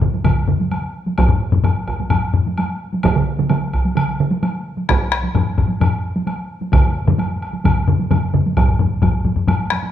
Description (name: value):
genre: japanese traditional, taiko drum ensemble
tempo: 130 BPM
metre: 4/4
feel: straight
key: none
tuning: none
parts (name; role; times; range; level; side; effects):
- solo taiko drums; percussion; 0.0-9.8 s; none; -18 LUFS; left 4 dB; none
- solo taiko drums; percussion; 0.0-8.4 s; none; -20 LUFS; right 4 dB; none
- taiko ensemble; percussion; 0.0-9.1 s; none; -20 LUFS; right 1 dB; none
- taiko ensemble; percussion; 0.1-9.9 s; none; -23 LUFS; right 2 dB; none
- woodblock; percussion; 0.2-9.8 s; none; -28 LUFS; equal; none
room: wet recital hall reverb, RT60 1.4 s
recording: close, detailed microphones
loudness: -15 LUFS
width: side -10 dB against mid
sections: 0.0-8.6 A section; 8.6-9.9 B section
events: none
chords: none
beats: 0.26 0.72 | 1.19 1.65 2.11 2.58 | 3.04 3.50 3.97 4.43 | 4.89 5.35 5.81 6.27 | 6.73 7.19 7.65 8.11 | 8.57 9.03 9.48